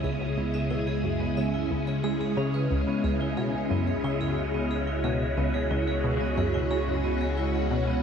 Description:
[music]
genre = ambient, sequencer-driven space music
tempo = 90 BPM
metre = 4/4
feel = straight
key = C# minor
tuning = A4 = 441 Hz
[part]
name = phased string machine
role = sustained chords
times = 0.0-8.0 s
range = C#3 to D#6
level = -28 LUFS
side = equal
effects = ensemble chorus, phaser
[part]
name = vibraphone with hard mallets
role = arpeggios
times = 0.0-8.0 s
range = B3 to E5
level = -33 LUFS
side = right 2 dB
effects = auto-pan, analog delay
[part]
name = tight sequenced synth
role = riff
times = 0.0-7.9 s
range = C#2 to G#3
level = -30 LUFS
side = equal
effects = chorus, analog delay
[part]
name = round analog bass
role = bass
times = 0.0-8.0 s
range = C#2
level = -33 LUFS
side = equal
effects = none
[sound]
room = wet huge ambient reverb, RT60 8.1 s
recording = dreamy mix soaked in reverb, cassette tape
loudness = -25 LUFS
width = side -7 dB against mid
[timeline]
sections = 0.0-8.0 A section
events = none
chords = 0.0 C#m7

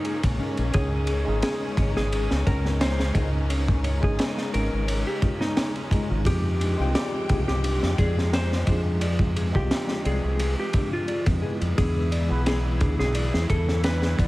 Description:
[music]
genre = trip hop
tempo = 87 BPM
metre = 4/4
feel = swing 54% on 16ths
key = unclear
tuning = A4 = 441 Hz
[part]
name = clean lap steel guitar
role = melody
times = 0.0-14.3 s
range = Eb4 to C5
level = -31 LUFS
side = left 1 dB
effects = tape echo
[part]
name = tine electric piano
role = accompaniment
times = 0.0-14.3 s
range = E3 to G5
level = -32 LUFS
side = equal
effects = medium stereo tremolo, harmonic tremolo, vintage 12-bit sampler grit, tape echo
[part]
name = rich symphonic string section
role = sustained chords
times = 0.0-14.3 s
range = C3 to G5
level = -36 LUFS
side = right 1 dB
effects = none
[part]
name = mellow electric guitar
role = arpeggios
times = 0.0-14.3 s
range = G#3 to D5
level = -36 LUFS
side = left 2 dB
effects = ping-pong delay
[part]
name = crunchy breakbeat drum kit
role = drums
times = 0.0-14.3 s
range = kick drum, ride cymbal, snare drum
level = -26 LUFS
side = equal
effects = none
[part]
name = deep dub fingered electric bass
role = bass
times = 0.2-14.3 s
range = G#1 to F2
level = -25 LUFS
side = equal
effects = none
[sound]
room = small room ambience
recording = vinyl crackle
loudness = -22 LUFS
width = side -19 dB against mid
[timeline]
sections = 0.0-14.3 A section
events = none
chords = 0.0 Bbm7; 0.7 C#sus2; 6.3 Fmadd9; 11.8 E

